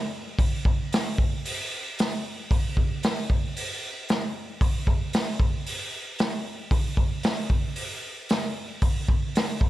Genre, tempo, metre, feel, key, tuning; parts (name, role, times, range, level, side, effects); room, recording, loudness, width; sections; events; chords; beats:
rock; 114 BPM; 4/4; straight
vintage drum kit; drums; 0.4-9.7 s; hi-hat, kick drum, snare drum; -24 LUFS; equal
little or no reverb; -24 LUFS; side -15 dB against mid
0.0-9.7 A section
| 0.40 0.92 1.45 1.98 | 2.51 3.04 3.56 4.09 | 4.62 5.15 5.67 6.20 | 6.73 7.26 7.78 8.31 | 8.84 9.36